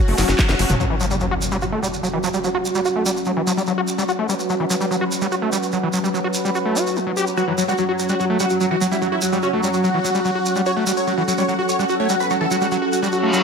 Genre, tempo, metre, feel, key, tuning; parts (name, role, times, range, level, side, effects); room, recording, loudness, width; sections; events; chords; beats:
psychedelic trance; 146 BPM; 4/4; straight; F# phrygian; A4 = 440 Hz
dense compressed supersaw; melody; 0.0-0.7, 7.4-13.4 s; F#3 to C#5; -22 LUFS; equal; phaser, sidechain pumping, digital delay
bubbling stepped-filter texture; sustained chords; 0.0-13.4 s; F#3 to B4; -25 LUFS; equal; chorus, built-in reverb, sidechain pumping
screaming distorted acid line; riff; 0.1-13.4 s; E3 to G4; -22 LUFS; moving between left 6 dB and right 5 dB; distortion, chorus, auto-pan, sidechain pumping, digital delay
tight sequencer bass; bass; 0.1-0.8 s; F#1; -20 LUFS; equal
drum and bass drum kit; drums; 0.1-0.8 s; handclaps, hi-hat, ride cymbal, snare drum, toms; -24 LUFS; equal; low-pass filter on hats, low-pass filter on cymbals, low-pass filter on snare, low-pass filter on toms
shekere; percussion; 0.2-13.4 s; -28 LUFS; right 3 dB
electronic kick drum; drums; 0.4-0.5 s; -17 LUFS; equal
impact and reverse cymbal; sound effects; 0.8-2.4, 13.2-13.4 s; -25 LUFS; equal
warbly tape-like pad; texture; 1.7-13.4 s; C#4 to F#5; -26 LUFS; right 2 dB; chorus, built-in reverb, phaser, sidechain pumping
moderate lush hall reverb, RT60 1.8 s; -18 LUFS; side -5 dB against mid
0.8-13.4 A section
drum fill 0.2-0.8; band accent 0.4; impact 0.8-2.4; reverse cymbal 13.2
0.0 F#5
0.39 | 0.80 1.21 1.62 2.03 | 2.44 2.85 3.26 3.67 | 4.09 4.50 4.91 5.32 | 5.73 6.14 6.55 6.96 | 7.37 7.79 8.20 8.61 | 9.02 9.43 9.84 10.25 | 10.66 11.07 11.48 11.89 | 12.30 12.72 13.13